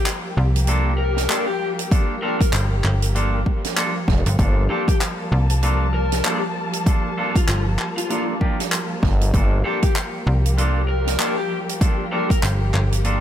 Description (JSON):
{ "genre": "glitch hop", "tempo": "97 BPM", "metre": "4/4", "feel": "swing 59% on 16ths", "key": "G minor", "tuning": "A4 = 440 Hz", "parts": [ { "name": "muted studio string section", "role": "sustained chords", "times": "0.0-13.2 s", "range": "F3 to A5", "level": "-28 LUFS", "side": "equal", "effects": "sidechain pumping" }, { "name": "swinging big-band drum kit", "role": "drums", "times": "0.1-13.2 s", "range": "handclaps, hi-hat, snare drum", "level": "-26 LUFS", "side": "right 1 dB", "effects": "none" }, { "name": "slap-like FM bass", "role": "bass", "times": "0.4-13.2 s", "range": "G1 to C2", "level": "-19 LUFS", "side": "equal", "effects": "none" }, { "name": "clean electric guitar", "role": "stabs", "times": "0.7-13.2 s", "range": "Bb3 to A4", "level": "-27 LUFS", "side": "right 1 dB", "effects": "vintage 12-bit sampler grit, sidechain pumping, tape echo" }, { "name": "lead guitar through a small cranked amp", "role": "melody", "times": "1.0-12.4 s", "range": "F4 to Bb4", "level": "-28 LUFS", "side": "left 4 dB", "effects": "overdrive, tape echo" }, { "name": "electronic kick drum", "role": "drums", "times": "1.9-12.4 s", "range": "none", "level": "-19 LUFS", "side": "equal", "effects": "overdrive" }, { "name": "gritty driven synth bass", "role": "bass", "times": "4.1-4.7, 9.0-9.6 s", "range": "F1 to G1", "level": "-19 LUFS", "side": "equal", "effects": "overdrive" } ], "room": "studio ambience", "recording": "faint mains hum", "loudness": "-18 LUFS", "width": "side -10 dB against mid", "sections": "0.0-13.2 A section", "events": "none", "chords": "0.0 Gm9" }